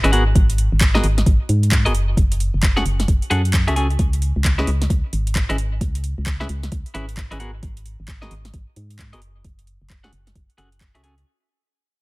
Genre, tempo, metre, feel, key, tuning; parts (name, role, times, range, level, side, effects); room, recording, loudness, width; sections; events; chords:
UK garage, two-step garage; 132 BPM; 4/4; swing 62% on 16ths; A4 = 439 Hz
semi-hollow electric guitar; stabs; 0.0-11.1 s; B3 to G#5; -23 LUFS; equal; tape echo
organ-like FM bass; bass; 0.0-11.2 s; F#1 to G#2; -20 LUFS; equal
garage drum kit; drums; 0.0-11.2 s; handclaps, hi-hat, snare drum; -26 LUFS; equal; overdrive
electronic kick drum; drums; 0.4-10.9 s; -18 LUFS; equal; overdrive
digital ambience; -16 LUFS; side -23 dB against mid
0.0-11.3 A section
fade-out 0.0-11.3
0.1 G#m9; 1.9 F#madd9; 4.0 C#m; 7.4 G#m9; 9.2 F#madd9